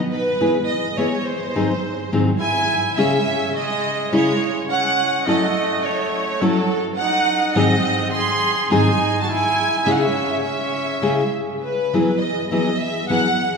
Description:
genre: mexican folk, mariachi.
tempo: 104 BPM.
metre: 4/4.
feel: swing 53% on 8ths.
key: C# harmonic minor.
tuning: A4 = 440 Hz.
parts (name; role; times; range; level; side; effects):
warm symphonic violin section; melody; 0.1-13.6 s; A4 to B#5; -21 LUFS; right 1 dB; none.
nylon-string guitar; accompaniment; 0.4-13.3 s; G#2 to A4; -20 LUFS; left 1 dB; none.
clear trumpet; second line; 2.4-11.3 s; F#3 to G#4; -26 LUFS; right 3 dB; none.
room: wet church reverb, RT60 3.6 s.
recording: recorded in a church or concert hall.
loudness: -17 LUFS.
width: side -5 dB against mid.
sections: 0.0-2.4 A section; 2.4-11.6 B section; 11.6-13.6 A section.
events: none.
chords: 0.1 E; 1.2 G#7; 2.4 C#m; 4.7 F#m7; 7.0 G#7; 9.3 C#m; 11.6 Eadd9.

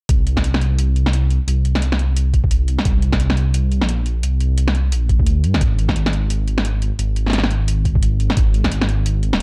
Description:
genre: half-time drum and bass.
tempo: 174 BPM.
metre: 4/4.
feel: swing 59% on 16ths, half-time.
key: unclear.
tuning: A4 = 440 Hz.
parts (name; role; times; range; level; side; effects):
dark detuned saw bass; bass; 0.1-9.4 s; Eb1 to G2; -20 LUFS; equal; none.
drum and bass drum kit; drums; 0.1-9.4 s; hi-hat, snare drum; -24 LUFS; equal; none.
electronic kick drum; drums; 0.1-8.7 s; none; -20 LUFS; equal; none.
room: little or no reverb.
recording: dark, warm production.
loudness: -18 LUFS.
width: mono.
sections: 0.1-9.4 A section.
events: none.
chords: none.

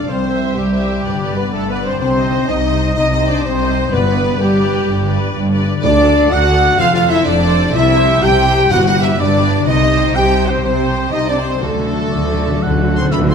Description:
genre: cinematic.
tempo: 125 BPM (dotted quarters).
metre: 12/8.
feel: straight.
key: G major.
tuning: A4 = 440 Hz.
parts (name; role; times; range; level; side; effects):
rich studio violin section; melody; 0.0-13.3 s; G4 to C6; -25 LUFS; left 2 dB; none.
clear symphonic violin section; second line; 0.0-13.1 s; G4 to G5; -26 LUFS; left 1 dB; none.
mellow flute section; second line; 0.0-13.3 s; G4 to G5; -24 LUFS; right 6 dB; none.
rich symphonic viola section; accompaniment; 0.0-13.3 s; F#4 to E5; -25 LUFS; right 2 dB; none.
mellow French horn section; sustained chords; 0.0-13.3 s; G3 to G4; -18 LUFS; left 3 dB; none.
concert harp; arpeggios; 0.0-13.3 s; G2 to A5; -24 LUFS; left 10 dB; none.
dark trumpet section; stabs; 0.0-13.3 s; G4 to G5; -21 LUFS; right 1 dB; none.
dark symphonic cello section; bass; 0.0-13.3 s; C2 to D3; -20 LUFS; right 2 dB; none.
rich symphonic double bass section; bass; 0.0-13.3 s; F1 to D2; -20 LUFS; right 3 dB; none.
timpani; percussion; 3.9-13.3 s; G2 to D3; -22 LUFS; equal; none.
warm oboe; second line; 12.1-13.3 s; D5 to F#5; -25 LUFS; right 2 dB; none.
room: moderate scoring stage reverb, RT60 1.7 s.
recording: none.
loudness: -12 LUFS.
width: side -6 dB against mid.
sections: 0.0-13.3 A section.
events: timpani fill 11.6-13.3.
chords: 0.1 C; 1.1 G; 2.0 Cm; 3.9 G; 5.8 D; 6.8 F; 7.7 C; 8.7 G; 9.7 Cm; 11.6 D.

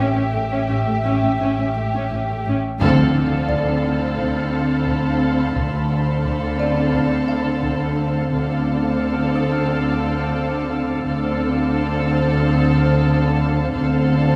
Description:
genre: cinematic, suspense film score.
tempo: 87 BPM.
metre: 4/4.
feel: straight.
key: D minor.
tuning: A4 = 440 Hz.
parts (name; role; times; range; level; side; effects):
muted symphonic violin section; melody; 0.0-14.4 s; E5 to F5; -33 LUFS; equal; none.
muted symphonic violin section; second line; 0.0-14.4 s; G4 to A4; -30 LUFS; equal; none.
muted symphonic viola section; accompaniment; 0.0-14.4 s; A3 to C#4; -26 LUFS; equal; none.
muted chamber cello section; bass; 0.0-14.4 s; A2 to D3; -25 LUFS; equal; none.
muted symphonic double bass section; bass; 0.0-14.4 s; A1 to D2; -27 LUFS; equal; none.
sub bass with octave; drone; 0.0-14.4 s; A1 to D2; -29 LUFS; equal; none.
music box; texture; 0.0-11.3 s; Db4 to Eb6; -33 LUFS; equal; none.
solo taiko drums; drums; 2.8-14.4 s; none; -33 LUFS; equal; none.
impact; sound effects; 2.8-5.6 s; none; -32 LUFS; equal; none.
muted symphonic violin section; texture; 2.8-13.4 s; A5 to F6; -37 LUFS; equal; none.
room: moderate scoring stage reverb, RT60 1.9 s.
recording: studio ambience.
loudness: -20 LUFS.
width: mono.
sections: 0.0-2.8 A section; 2.8-14.4 B section.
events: band accent 2.8-3.5; impact 2.8-5.6.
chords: 0.0 A7; 2.8 Dm7.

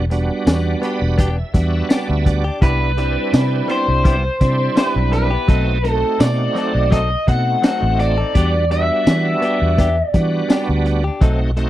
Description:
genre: straight-eighth soul blues.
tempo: 84 BPM.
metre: 4/4.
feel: swing 54% on 16ths.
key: E minor.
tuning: A4 = 440 Hz.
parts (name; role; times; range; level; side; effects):
raw garage guitar; melody; 0.0-10.8 s; B4 to F#5; -20 LUFS; left 1 dB; overdrive.
bright tonewheel organ; accompaniment; 0.0-11.7 s; G3 to B5; -22 LUFS; right 3 dB; slow rotary speaker, overdrive, chorus vibrato.
vintage muted fingered electric bass; bass; 0.0-11.7 s; E1 to E3; -18 LUFS; equal; none.
direct-recorded clean electric guitar; stabs; 0.1-11.6 s; F#3 to A4; -27 LUFS; left 4 dB; none.
crunchy breakbeat drum kit; drums; 0.1-11.7 s; hi-hat, kick drum, snare drum, tambourine; -15 LUFS; equal; none.
room: studio reverb.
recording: dry, close 1970s-style studio recording.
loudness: -14 LUFS.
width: side -14 dB against mid.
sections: 0.0-11.7 A section.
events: tonewheel organ fill 0.5-2.6.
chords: 0.0 Em7; 2.6 Cmaj7; 5.5 B7b9; 8.4 Em7.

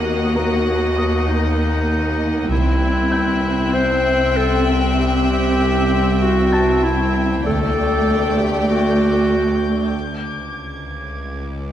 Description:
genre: cinematic.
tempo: 97 BPM.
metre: 4/4.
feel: straight.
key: unclear.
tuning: A4 = 438 Hz.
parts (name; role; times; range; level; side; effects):
rich chamber violin section; melody; 0.0-9.9 s; Gb5 to G5; -28 LUFS; left 4 dB; none.
rich studio violin section; second line; 0.0-9.9 s; D5 to E5; -27 LUFS; equal; none.
warm clarinet; second line; 0.0-9.9 s; Eb4 to C5; -20 LUFS; left 1 dB; none.
rich chamber viola section; accompaniment; 0.0-9.9 s; A3 to C4; -24 LUFS; left 1 dB; none.
rich chamber cello section; bass; 0.0-9.9 s; C2 to Eb2; -22 LUFS; right 2 dB; none.
bowed-like drone; drone; 0.0-11.7 s; C2 to Eb2; -24 LUFS; equal; built-in reverb.
dark baby grand piano; texture; 0.0-10.0 s; Bb4 to A6; -31 LUFS; left 1 dB; none.
rich chamber violin section; texture; 0.0-11.7 s; C6 to G6; -32 LUFS; left 4 dB; none.
rich chamber double bass section; bass; 2.5-3.1, 7.5-8.0 s; C2 to D2; -21 LUFS; right 2 dB; none.
room: moderate concert hall reverb, RT60 1.9 s.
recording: none.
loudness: -15 LUFS.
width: side -10 dB against mid.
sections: 0.0-11.7 A section.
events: break 9.9-11.7.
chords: 0.0 Ebm; 2.5 C; 7.5 Dsus4; 9.9 G5.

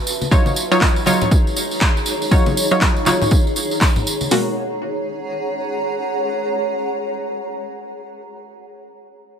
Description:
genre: deep house.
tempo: 120 BPM.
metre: 4/4.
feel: swing 60% on 16ths.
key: G# dorian.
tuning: A4 = 440 Hz.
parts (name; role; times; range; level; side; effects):
filtered dub chord stab; stabs; 0.0-7.8 s; B2 to C#5; -20 LUFS; equal; chorus, sidechain pumping, digital delay.
granular cloud pad; texture; 0.0-8.0 s; D#4 to A#5; -23 LUFS; equal; built-in reverb, sidechain pumping.
tambourine; percussion; 0.1-4.3 s; none; -25 LUFS; right 2 dB; none.
congas; percussion; 0.2-4.3 s; none; -24 LUFS; left 3 dB; sidechain pumping on perc.
punchy analog drum machine; drums; 0.3-4.5 s; hi-hat, kick drum, snare drum; -16 LUFS; equal; none.
electronic handclaps; drums; 0.8-3.9 s; none; -22 LUFS; equal; none.
room: light reverb.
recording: none.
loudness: -16 LUFS.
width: side -7 dB against mid.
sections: 0.0-4.3 A section; 4.3-8.3 B section.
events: none.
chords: 0.1 D#m9; 4.3 G#m9.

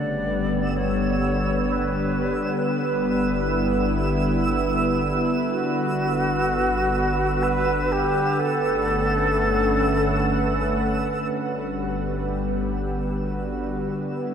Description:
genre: ambient.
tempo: 63 BPM.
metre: 3/4.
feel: straight.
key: G lydian.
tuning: A4 = 439 Hz.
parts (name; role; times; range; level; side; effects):
bright reedy alto flute; melody; 0.0-14.3 s; E4 to D5; -26 LUFS; left 1 dB; diffuse ambient delay.
warm analog pad; sustained chords; 0.0-14.3 s; C#3 to F#5; -23 LUFS; equal; chorus.
deep rumbling drone; bass; 0.1-14.3 s; G1; -30 LUFS; equal; built-in reverb.
twinkling granular texture; texture; 0.7-14.3 s; E6; -32 LUFS; right 4 dB; built-in reverb.
room: wet huge ambient reverb, RT60 7.4 s.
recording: dark, warm production.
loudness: -20 LUFS.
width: side -8 dB against mid.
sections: 0.0-11.3 A section; 11.3-14.3 B section.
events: fade-in on alto flute 0.0-11.3.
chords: 0.0 Gmaj7; 2.7 Em7/G; 8.4 Bm9/G; 11.3 Gmaj7.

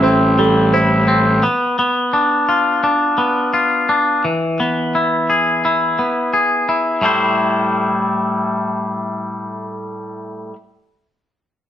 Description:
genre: rock.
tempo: 86 BPM.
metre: 4/4.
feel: straight.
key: A minor.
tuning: A4 = 438 Hz.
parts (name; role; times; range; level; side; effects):
felt-muted upright piano; arpeggios; 0.0-1.4 s; A4 to C5; -21 LUFS; right 6 dB; none.
twangy electric guitar; arpeggios; 0.0-10.6 s; A2 to C5; -15 LUFS; left 1 dB; none.
fuzz fingered electric bass; bass; 0.0-1.4 s; A1; -15 LUFS; equal; overdrive.
room: wet stone room reverb, RT60 0.9 s.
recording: band playing live in one room.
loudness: -14 LUFS.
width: side -10 dB against mid.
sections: 0.0-7.0 A section; 7.0-9.8 B section.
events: none.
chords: 0.0 Am7; 1.4 Bdim; 4.2 E; 7.0 Am7.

